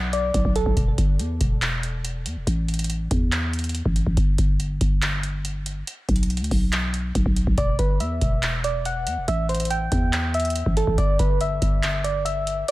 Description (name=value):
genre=hip hop, trap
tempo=141 BPM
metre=4/4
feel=half-time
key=E minor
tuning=A4 = 437 Hz
part: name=soft electric-piano-like synth keys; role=melody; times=0.0-0.7, 7.6-12.7 s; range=A4 to G5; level=-26 LUFS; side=right 1 dB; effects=chorus, low-pass filter, digital delay
part: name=growling 808-style bass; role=bass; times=0.0-12.6 s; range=E1 to E2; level=-24 LUFS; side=equal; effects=none
part: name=booming analog drum machine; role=drums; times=0.1-12.7 s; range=handclaps, hi-hat, kick drum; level=-24 LUFS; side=equal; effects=none
room=digital ambience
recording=none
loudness=-20 LUFS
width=side -18 dB against mid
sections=0.0-12.7 A section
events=none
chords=0.0 Bm; 0.8 Em; 2.5 A5; 4.2 N.C.; 7.6 Em; 9.3 A5; 11.0 G6